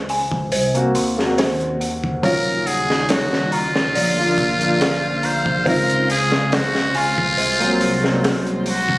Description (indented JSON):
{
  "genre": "trip hop",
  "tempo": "70 BPM",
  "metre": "4/4",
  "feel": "straight",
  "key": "unclear",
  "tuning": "A4 = 440 Hz",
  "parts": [
    { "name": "dark detuned synth bell", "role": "arpeggios", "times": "0.0-9.0 s", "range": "C5 to Fb6", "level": "-25 LUFS", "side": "equal", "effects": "chorus, tape echo" },
    { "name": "dark detuned saw bass", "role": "bass", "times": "0.0-9.0 s", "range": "Eb1 to Eb2", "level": "-25 LUFS", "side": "equal", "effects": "none" },
    { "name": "crunchy breakbeat drum kit", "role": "drums", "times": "0.1-9.0 s", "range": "hi-hat, kick drum, snare drum", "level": "-23 LUFS", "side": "equal", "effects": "none" },
    { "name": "dark upright piano", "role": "accompaniment", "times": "0.7-9.0 s", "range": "Gb3 to Gb4", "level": "-22 LUFS", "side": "left 1 dB", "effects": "tremolo, vintage 12-bit sampler grit" },
    { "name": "trumpet with metal mute", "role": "melody", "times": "2.2-9.0 s", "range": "F4 to C5", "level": "-20 LUFS", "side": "equal", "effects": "tape echo" },
    { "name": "dark studio string section", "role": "sustained chords", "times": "2.2-9.0 s", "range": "C3 to F5", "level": "-28 LUFS", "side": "equal", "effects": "none" },
    { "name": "backwards swelling texture", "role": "texture", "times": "3.4-9.0 s", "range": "C5 to C6", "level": "-34 LUFS", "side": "equal", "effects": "none" }
  ],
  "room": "light reverb, studio reverb",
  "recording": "recorded on a phone in the room, club reverb",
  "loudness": "-16 LUFS",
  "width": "side -20 dB against mid",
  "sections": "0.0-9.0 A section",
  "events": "none",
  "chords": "0.0 Dbmaj7; 0.5 Ab7/C (rootless); 2.2 Ebm7; 4.0 Bb; 5.7 Dbmaj7; 7.4 Ab7/C",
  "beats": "0.53 1.38 | 2.24 3.10 3.95 4.81 | 5.67 6.53 7.38 8.24"
}